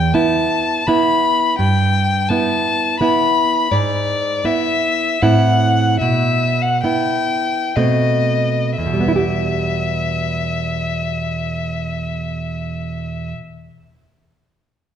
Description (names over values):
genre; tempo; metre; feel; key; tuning
romantic duo for violin and classical guitar; 57-86 BPM; 3/4; rubato; E minor; A4 = 437 Hz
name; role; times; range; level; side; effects
rich violin; melody; 0.0-13.3 s; D5 to B5; -19 LUFS; left 5 dB; none
nylon-string guitar; accompaniment; 0.0-13.7 s; E2 to G4; -18 LUFS; right 3 dB; none
room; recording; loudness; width
wet recital hall reverb, RT60 1.4 s; dark, warm production; -15 LUFS; side -9 dB against mid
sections
0.0-8.8 A section; 8.8-14.8 B section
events
slowing down 2.6-8.8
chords
0.0 E5; 1.6 Em/G; 3.7 E7/G#; 5.2 Am; 6.0 Em/B; 7.8 B7b9; 8.8 Em